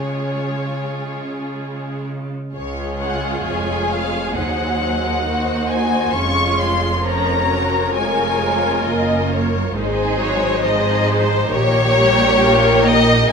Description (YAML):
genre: classical, slow romantic movement for string orchestra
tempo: 66 BPM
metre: 4/4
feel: rubato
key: Db major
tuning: A4 = 439 Hz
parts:
  - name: warm symphonic violin section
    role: melody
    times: 0.0-13.3 s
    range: C5 to Db6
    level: -20 LUFS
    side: left 2 dB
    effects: none
  - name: warm symphonic violin section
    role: second line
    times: 0.0-13.3 s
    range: Eb4 to Eb5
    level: -22 LUFS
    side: left 1 dB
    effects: none
  - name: rich chamber viola section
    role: accompaniment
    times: 0.0-13.3 s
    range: Eb3 to Ab4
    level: -23 LUFS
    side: right 2 dB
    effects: none
  - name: rich symphonic cello section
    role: bass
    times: 0.0-13.3 s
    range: Db2 to Db3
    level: -24 LUFS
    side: right 1 dB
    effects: none
  - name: rich symphonic double bass section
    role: bass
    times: 2.5-13.3 s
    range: F1 to Eb2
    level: -25 LUFS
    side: right 2 dB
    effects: none
room: wet recital hall reverb, RT60 1.5 s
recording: minimal, uncompressed stereo recording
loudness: -16 LUFS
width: side -6 dB against mid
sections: 0.0-2.5 A section; 2.5-13.3 B section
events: none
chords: 0.0 Db; 4.3 Ab7/Eb; 6.1 Db/F; 9.8 Ab; 11.5 Eb7/Bb